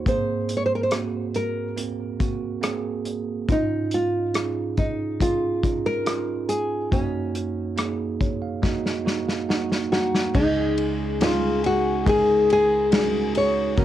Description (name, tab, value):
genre	pop ballad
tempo	70 BPM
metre	4/4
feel	straight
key	Db major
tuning	A4 = 441 Hz
part	nylon-string guitar	melody	0.0-13.8 s	Db4 to Db5	-24 LUFS	equal	cassette tape
part	bell-like tine electric piano	accompaniment	0.0-13.8 s	Db2 to Bb5	-26 LUFS	right 5 dB	none
part	unplugged drum kit	drums	0.1-13.8 s	crash cymbal, hi-hat, kick drum, ride cymbal, rim click, snare drum	-25 LUFS	left 1 dB	cassette tape
part	dark French horn section	second line	10.3-13.8 s	Gb4 to Ab4	-28 LUFS	left 8 dB	analog delay
part	picked steel-string acoustic guitar	arpeggios	10.3-13.8 s	Db3 to Bb4	-29 LUFS	left 5 dB	analog delay
room	wet small room reverb, RT60 0.5 s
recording	home recording on cassette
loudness	-21 LUFS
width	side -12 dB against mid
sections	0.0-10.3 A section; 10.3-13.8 B section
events	tine electric piano fill 7.8-10.3; drum fill 8.6-10.3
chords	0.1 Abadd9; 3.5 Dbadd9/Ab; 6.9 Gb6; 10.3 Dbsus2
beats	| 0.06 0.92 1.77 2.63 | 3.49 4.35 5.20 6.06 | 6.92 7.77 8.63 9.49 | 10.35 11.20 12.06 12.92 | 13.77